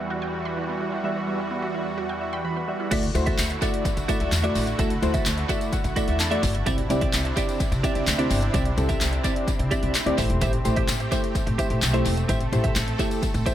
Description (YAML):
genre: dance-pop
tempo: 128 BPM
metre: 4/4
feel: straight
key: unclear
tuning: A4 = 440 Hz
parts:
  - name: soft electric-piano-like synth keys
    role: accompaniment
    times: 0.0-13.5 s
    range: G3 to B5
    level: -28 LUFS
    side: equal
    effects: chorus, sidechain pumping, low-pass filter
  - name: supersaw pad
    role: sustained chords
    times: 0.0-13.5 s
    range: E2 to A4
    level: -31 LUFS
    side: right 2 dB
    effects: sidechain pumping, low-pass filter
  - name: wide unison pluck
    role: arpeggios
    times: 0.1-2.9 s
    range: E3 to B5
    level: -35 LUFS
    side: right 3 dB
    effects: sidechain pumping, low-pass filter, tape echo
  - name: direct-recorded clean electric guitar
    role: riff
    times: 2.9-13.5 s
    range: F#4 to E5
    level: -32 LUFS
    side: right 4 dB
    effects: analog chorus, tape echo
  - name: upright bass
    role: bass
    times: 2.9-13.4 s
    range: E1 to D3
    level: -26 LUFS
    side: equal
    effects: sidechain pumping
  - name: punchy analog drum machine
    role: drums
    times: 2.9-13.5 s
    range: crash cymbal, handclaps, hi-hat, kick drum, snare drum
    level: -26 LUFS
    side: equal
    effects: tape echo
  - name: tambourine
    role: percussion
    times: 2.9-13.5 s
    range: none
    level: -38 LUFS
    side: left 7 dB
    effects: tape echo
room: light reverb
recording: echo-heavy mix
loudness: -22 LUFS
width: side -11 dB against mid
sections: 0.0-2.9 A section; 2.9-13.5 B section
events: synth keys fill 2.0-2.9, 5.3-6.7; drop 2.9-13.5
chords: 0.0 Emadd9; 2.9 Dadd9; 6.7 Cadd9; 10.2 Am7